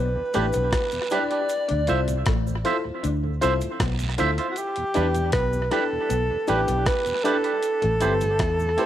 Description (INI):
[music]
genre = lovers rock reggae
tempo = 78 BPM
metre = 4/4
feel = straight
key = unclear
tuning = A4 = 440 Hz
[part]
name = warm alto saxophone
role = melody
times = 0.0-8.9 s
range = F#4 to D5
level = -25 LUFS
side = equal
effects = tape echo
[part]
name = electric guitar through a small old amp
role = riff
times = 0.0-8.6 s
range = G3 to E4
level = -34 LUFS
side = left 5 dB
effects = analog chorus
[part]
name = vintage muted fingered electric bass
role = bass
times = 0.0-8.8 s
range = G1 to E2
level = -25 LUFS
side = equal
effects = none
[part]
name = FM electric piano with soft pad layer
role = accompaniment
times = 0.2-8.9 s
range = C4 to C5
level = -30 LUFS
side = left 3 dB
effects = chorus
[part]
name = mellow tonewheel organ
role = accompaniment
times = 0.2-8.9 s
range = D2 to G4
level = -36 LUFS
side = right 2 dB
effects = none
[part]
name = twangy electric guitar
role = stabs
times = 0.3-8.9 s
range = D4 to E5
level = -29 LUFS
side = right 5 dB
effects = tape echo
[part]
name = gated 80s digital drum machine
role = drums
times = 0.3-8.9 s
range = hi-hat, kick drum, rim click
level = -28 LUFS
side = equal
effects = overdrive, tape echo
[part]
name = cabasa and guiro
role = percussion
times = 0.3-8.8 s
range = none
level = -39 LUFS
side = right 6 dB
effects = tape echo
[sound]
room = light reverb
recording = none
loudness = -21 LUFS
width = side -11 dB against mid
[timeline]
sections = 0.0-8.9 A section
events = none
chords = 0.0 Em7; 1.5 Dm9; 4.6 Em7; 7.6 Am7